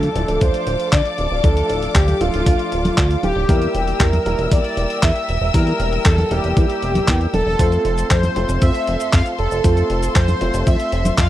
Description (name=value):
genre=italo disco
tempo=117 BPM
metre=4/4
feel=straight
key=D minor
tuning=A4 = 439 Hz
part: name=analog synth brass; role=melody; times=0.0-11.3 s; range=F4 to F5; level=-21 LUFS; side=equal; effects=chorus, tape echo
part: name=warm studio string section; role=sustained chords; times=0.0-11.3 s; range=F4 to E6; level=-28 LUFS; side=left 2 dB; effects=none
part: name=warm grand piano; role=stabs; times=0.0-11.3 s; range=F3 to C5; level=-26 LUFS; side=right 1 dB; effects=none
part: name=chorused synth bass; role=bass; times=0.0-11.3 s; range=D1 to F2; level=-20 LUFS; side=equal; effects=none
part: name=dusty soul sampler-style drum kit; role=drums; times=0.0-11.3 s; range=cabasa, congas, handclaps, hi-hat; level=-24 LUFS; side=right 1 dB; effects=none
part: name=electronic kick drum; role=drums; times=0.4-11.3 s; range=none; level=-16 LUFS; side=equal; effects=none
room=little or no reverb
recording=dry, close 1970s-style studio recording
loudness=-15 LUFS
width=side -13 dB against mid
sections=0.0-11.3 A section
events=none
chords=0.0 Dm; 3.5 Edim; 7.6 F